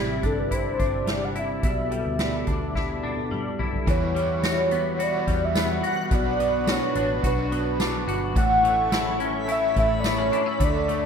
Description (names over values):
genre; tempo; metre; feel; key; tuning
dream pop; 107 BPM; 4/4; straight; E dorian from 3.9 s; A4 = 440 Hz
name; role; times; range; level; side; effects
warm velvety synth lead; melody; 0.0-11.1 s; G4 to F#5; -25 LUFS; right 1 dB; chorus, ping-pong delay
hollow soft pad; sustained chords; 0.0-11.1 s; C3 to D6; -33 LUFS; right 1 dB; chorus
clean electric guitar; arpeggios; 0.0-11.1 s; A2 to F#4; -28 LUFS; left 4 dB; ensemble chorus, ping-pong delay
vintage muted fingered electric bass; bass; 0.0-11.1 s; G1 to E2; -32 LUFS; equal; none
soft-mallet drum kit; drums; 0.2-11.0 s; hi-hat, kick drum, snare drum, tambourine, toms; -28 LUFS; equal; none
overdriven semi-hollow guitar; accompaniment; 3.9-11.1 s; E2 to A4; -35 LUFS; right 5 dB; tremolo, wide subtle chorus
room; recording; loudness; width
moderate plate reverb, RT60 1.5 s, studio ambience; rough home demo mix; -21 LUFS; side -6 dB against mid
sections
0.0-3.9 A section; 3.9-11.1 B section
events
drum fill 2.8-3.9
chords
0.0 Cadd9; 1.6 G6/B; 3.9 Emadd9; 6.1 Bm; 8.4 A